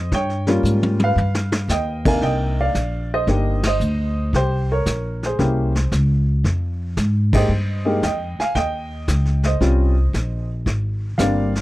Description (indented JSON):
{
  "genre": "jazz piano trio",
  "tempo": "114 BPM",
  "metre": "4/4",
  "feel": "swing 68% on 8ths",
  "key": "C minor",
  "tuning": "A4 = 440 Hz",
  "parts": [
    { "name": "warm baby grand piano", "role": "melody", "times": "0.0-11.6 s", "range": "C3 to Ab5", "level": "-22 LUFS", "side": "equal", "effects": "none" },
    { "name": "upright bass", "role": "bass", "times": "0.0-11.6 s", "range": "G1 to Ab2", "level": "-20 LUFS", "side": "equal", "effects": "none" },
    { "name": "vintage brush drum kit", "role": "drums", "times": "0.1-11.6 s", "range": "brushed snare drum, crash cymbal, hi-hat, kick drum, ride cymbal, snare drum, toms", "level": "-24 LUFS", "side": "equal", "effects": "none" }
  ],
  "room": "little or no reverb",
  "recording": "dry, close 1970s-style studio recording",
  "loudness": "-17 LUFS",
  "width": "side -17 dB against mid",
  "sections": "0.0-2.2 A section; 2.2-11.6 B section",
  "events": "drum fill 0.6-1.7; band accent 3.5, 7.2",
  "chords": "0.1 Gm7b5; 1.2 G7alt; 2.2 Cm9; 4.3 C7(no3); 6.4 Fm9; 8.6 Eb13; 10.7 Abmaj9#11",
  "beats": "| 0.12 0.65 1.17 1.70 | 2.23 2.76 3.28 3.81 | 4.34 4.87 5.39 5.92 | 6.45 6.97 7.50 8.03 | 8.55 9.08 9.61 10.13 | 10.66 11.19"
}